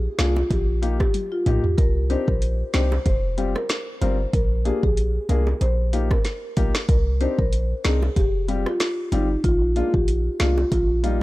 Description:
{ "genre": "dancehall", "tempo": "94 BPM", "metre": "4/4", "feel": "swing 56% on 16ths", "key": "unclear", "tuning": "A4 = 440 Hz", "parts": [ { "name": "warm 808-style bass", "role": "bass", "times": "0.0-11.2 s", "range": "F1 to C2", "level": "-22 LUFS", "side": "equal", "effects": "none" }, { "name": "marimba with soft mallets", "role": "melody", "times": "0.2-10.9 s", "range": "Eb4 to C5", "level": "-26 LUFS", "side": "equal", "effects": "tape echo" }, { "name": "warm concert grand piano", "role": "accompaniment", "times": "0.2-11.2 s", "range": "G3 to Bb4", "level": "-29 LUFS", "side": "left 5 dB", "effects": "none" }, { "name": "afro-pop drum kit", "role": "drums", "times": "0.2-11.2 s", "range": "finger snaps, hi-hat, kick drum, rim click, snare drum, toms", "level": "-23 LUFS", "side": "equal", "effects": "vintage 12-bit sampler grit" }, { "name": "bongos", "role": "percussion", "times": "0.2-10.9 s", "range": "none", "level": "-35 LUFS", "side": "right 3 dB", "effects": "none" } ], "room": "small room ambience", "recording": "none", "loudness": "-19 LUFS", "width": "side -18 dB against mid", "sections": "0.0-11.2 A section", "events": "drum fill 1.1-1.8", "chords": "0.0 Bb7; 0.5 Ebadd9/Bb; 1.8 Cmadd9; 3.1 Fsus2; 4.3 Bb7; 5.6 Ebadd9/Bb; 6.9 Cmadd9; 8.2 Fsus2; 9.4 Bb7; 10.7 Ebadd9/Bb", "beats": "0.50 1.14 | 1.78 2.42 3.06 3.70 | 4.33 4.97 5.61 6.25 | 6.89 7.53 8.16 8.80 | 9.44 10.08 10.72" }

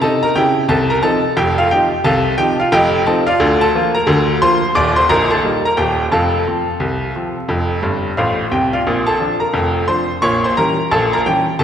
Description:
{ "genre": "ragtime piano", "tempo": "88 BPM", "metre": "2/4", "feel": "swing 60% on 16ths", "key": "Bb major", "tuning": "A4 = 438 Hz", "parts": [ { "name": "bright baby grand piano", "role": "solo", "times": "0.0-11.6 s", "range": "Bb0 to D6", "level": "-13 LUFS", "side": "equal", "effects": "none" } ], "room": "wet scoring stage reverb, RT60 2.0 s", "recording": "recorded in a church or concert hall", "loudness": "-13 LUFS", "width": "side -9 dB against mid", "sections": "0.0-11.6 A section", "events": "grand piano fill 7.8-8.9", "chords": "0.0 Bbdim7; 0.7 F7; 3.4 Bb/D; 4.8 Eb; 6.1 F; 8.9 Bb; 10.2 Bbdim7", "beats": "0.01 | 0.69 1.37 | 2.05 2.73 | 3.41 4.09 | 4.77 5.45 | 6.13 6.82 | 7.50 8.19 | 8.87 9.55 | 10.23 10.91 | 11.59" }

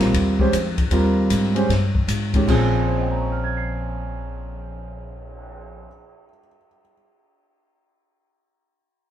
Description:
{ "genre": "modal jazz", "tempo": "155 BPM", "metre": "4/4", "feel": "swing 64% on 8ths", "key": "Bb dorian", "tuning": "A4 = 438 Hz", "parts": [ { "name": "warm concert grand piano", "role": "accompaniment", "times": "0.0-6.9 s", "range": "Bb2 to C7", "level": "-22 LUFS", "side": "right 1 dB", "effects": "none" }, { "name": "upright bass", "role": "bass", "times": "0.0-5.8 s", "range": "Bb1 to Ab2", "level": "-24 LUFS", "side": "equal", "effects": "none" }, { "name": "open jazz drum kit", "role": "drums", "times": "0.0-5.5 s", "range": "crash cymbal, cymbal swell, hi-hat, kick drum, ride cymbal, snare drum", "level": "-25 LUFS", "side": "left 1 dB", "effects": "none" } ], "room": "wet stone room reverb, RT60 1.0 s", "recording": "band playing live in one room", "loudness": "-18 LUFS", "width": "side -11 dB against mid", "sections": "0.0-2.5 A section; 2.5-5.6 B section", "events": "none", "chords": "0.0 Abadd9/Bb", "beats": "0.14 0.53 | 0.92 1.31 1.70 2.09 | 2.48 2.86 3.25 3.64 | 4.03 4.42 4.80 5.19" }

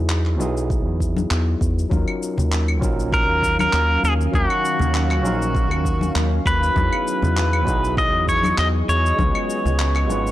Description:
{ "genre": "sunset chillout", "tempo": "99 BPM", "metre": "4/4", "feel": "swing 54% on 16ths", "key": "unclear", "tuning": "A4 = 440 Hz", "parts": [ { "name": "overdriven tine electric piano", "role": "accompaniment", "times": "0.0-10.3 s", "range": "F#3 to F5", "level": "-27 LUFS", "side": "moving between left 4 dB and right 3 dB", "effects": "auto-pan, analog delay" }, { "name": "deep dub fingered electric bass", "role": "bass", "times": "0.0-10.3 s", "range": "Ab1 to E2", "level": "-21 LUFS", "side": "equal", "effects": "none" }, { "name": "electronic handclaps, cabasa and claves", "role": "drums", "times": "0.1-10.3 s", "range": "none", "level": "-28 LUFS", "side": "left 1 dB", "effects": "overdrive" }, { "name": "congas", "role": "percussion", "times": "0.4-10.2 s", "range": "none", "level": "-28 LUFS", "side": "left 4 dB", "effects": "none" }, { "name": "electronic kick drum", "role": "drums", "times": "0.7-9.3 s", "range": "none", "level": "-23 LUFS", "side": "equal", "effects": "overdrive" }, { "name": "shimmering ambient pad", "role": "sustained chords", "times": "2.7-10.3 s", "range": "Eb3 to F5", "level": "-28 LUFS", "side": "right 1 dB", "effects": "chorus, built-in reverb" }, { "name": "pedal steel guitar", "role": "melody", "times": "3.1-10.3 s", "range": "Gb4 to D#5", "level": "-21 LUFS", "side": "equal", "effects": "analog delay" } ], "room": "little or no reverb", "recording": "dry, gritty hardware recording, transformer saturation, cassette tape", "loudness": "-17 LUFS", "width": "side -14 dB against mid", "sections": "0.0-10.3 A section", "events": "none", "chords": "0.0 Emaj9; 1.9 Ebm9; 6.8 Emaj9; 9.2 Db7", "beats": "0.10 0.70 1.31 | 1.91 2.52 3.13 3.73 | 4.34 4.95 5.55 6.16 | 6.76 7.37 7.97 8.58 | 9.19 9.79" }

